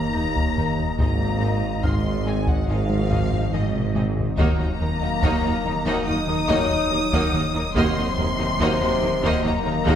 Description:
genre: cinematic, hybrid orchestral and electronic film score.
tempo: 71 BPM.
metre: 4/4.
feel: straight.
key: Eb dorian.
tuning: A4 = 441 Hz.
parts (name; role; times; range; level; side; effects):
warm symphonic violin section; melody; 0.0-10.0 s; Eb5 to Eb6; -28 LUFS; left 3 dB; none.
airy breathy pad; sustained chords; 0.0-10.0 s; Eb3 to Eb5; -31 LUFS; equal; chorus.
dark French horn section; sustained chords; 0.0-10.0 s; C3 to Eb4; -28 LUFS; left 3 dB; none.
round analog bass; riff; 0.0-10.0 s; Eb2 to Ab3; -30 LUFS; left 2 dB; none.
mellow tuba; bass; 0.0-9.9 s; Ab1 to Eb2; -30 LUFS; right 3 dB; none.
rich chamber double bass section; bass; 0.0-9.9 s; Ab1 to Eb2; -30 LUFS; right 3 dB; none.
rich symphonic cello section; bass; 0.0-9.9 s; Eb2 to Ab2; -29 LUFS; right 2 dB; none.
sub bass with octave; bass; 0.0-10.0 s; Eb1 to Ab1; -33 LUFS; equal; none.
felt-muted upright piano; texture; 0.0-10.0 s; Ab4 to Gb6; -36 LUFS; left 2 dB; none.
clear symphonic viola section; accompaniment; 0.1-10.0 s; Bb3 to Eb4; -30 LUFS; right 2 dB; none.
warm symphonic violin section; second line; 0.2-10.0 s; Eb4 to Eb5; -31 LUFS; left 3 dB; none.
taiko ensemble; drums; 0.4-10.0 s; none; -26 LUFS; equal; none.
room: wet recital hall reverb, RT60 1.4 s.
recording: recorded in a church or concert hall.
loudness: -19 LUFS.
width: side -9 dB against mid.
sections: 0.0-10.0 A section.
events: drum fill 3.5-4.4.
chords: 0.0 Eb5; 1.0 Ab; 4.4 Ebm.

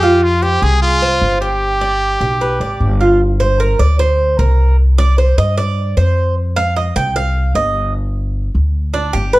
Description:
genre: latin, Cuban son and guajira.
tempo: 151 BPM.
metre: 4/4.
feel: straight.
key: unclear.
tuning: A4 = 440 Hz.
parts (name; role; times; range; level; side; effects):
brilliant trumpet; melody; 0.0-3.0 s; F4 to Ab4; -16 LUFS; equal; plate reverb.
Cuban tres; arpeggios; 0.0-9.4 s; D4 to G5; -16 LUFS; right 2 dB; none.
upright bass; bass; 0.0-9.4 s; G1 to G2; -15 LUFS; equal; none.
room: light reverb.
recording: dark, warm production.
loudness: -12 LUFS.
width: side -19 dB against mid.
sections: 0.0-3.2 A section; 3.2-9.4 B section.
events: Cuban tres solo 3.2-9.4.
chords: 0.0 Fm; 1.6 G; 3.2 Gm; 4.8 C5; 6.4 F5; 8.0 G5.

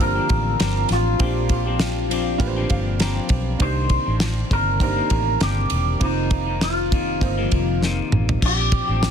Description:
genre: indie pop, bedroom pop.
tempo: 100 BPM.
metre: 4/4.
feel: swing 55% on 16ths.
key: Bb major.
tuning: A4 = 440 Hz.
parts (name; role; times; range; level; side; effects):
electric guitar with an envelope filter; melody; 0.0-9.1 s; Eb4 to C5; -25 LUFS; equal; wide subtle chorus, tape echo.
semi-hollow electric guitar; accompaniment; 0.0-9.1 s; F2 to G4; -28 LUFS; left 8 dB; wide subtle chorus, warbly pitch drift.
warm upright piano; accompaniment; 0.0-8.4 s; Bb3 to Bb5; -30 LUFS; right 8 dB; cassette tape.
vintage muted fingered electric bass; bass; 0.0-9.1 s; E1 to C2; -23 LUFS; equal; none.
damped 70s drum kit; drums; 0.0-9.1 s; crash cymbal, kick drum, ride cymbal, snare drum, toms; -23 LUFS; equal; none.
room: small room ambience.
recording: dense, heavily limited modern master.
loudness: -18 LUFS.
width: side -8 dB against mid.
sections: 0.0-8.4 A section.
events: upright piano fill 2.4-3.6; drum fill 7.8-8.4.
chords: 0.0 Bb69; 3.6 Cm9; 6.0 F7sus4; 8.4 Bb69.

